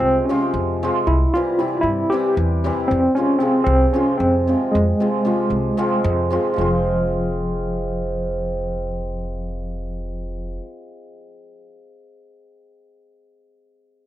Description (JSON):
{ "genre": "balkan folk, Balkan wedding band", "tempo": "229 BPM (eighths)", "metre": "7/8", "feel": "straight", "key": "F harmonic minor", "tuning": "A4 = 440 Hz", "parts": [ { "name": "mellow tine electric piano", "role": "melody", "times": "0.0-10.6 s", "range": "F3 to G4", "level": "-20 LUFS", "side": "equal", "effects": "medium tremolo" }, { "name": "hammered dulcimer", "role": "accompaniment", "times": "0.0-11.6 s", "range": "C3 to F4", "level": "-23 LUFS", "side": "equal", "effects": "none" }, { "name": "upright bass", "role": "bass", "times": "0.0-10.6 s", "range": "F1 to G2", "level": "-23 LUFS", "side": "equal", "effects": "none" } ], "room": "small room ambience", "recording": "dry, close 1970s-style studio recording", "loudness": "-17 LUFS", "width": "side -13 dB against mid", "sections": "0.0-6.6 A section; 6.6-10.2 B section", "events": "none", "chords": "0.0 Fm; 1.1 C; 2.9 Fm", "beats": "0.03 0.29 0.56 0.82 | 1.08 1.34 1.60 1.86 2.13 2.39 2.65 | 2.91 3.17 3.44 3.70 3.96 4.22 4.48 | 4.74 5.01 5.27 5.53 5.79 6.05 6.31 | 6.58 6.84 7.10 7.36 7.62 7.88 8.14 | 8.41 8.67 8.93 9.19 9.45 9.71 9.98" }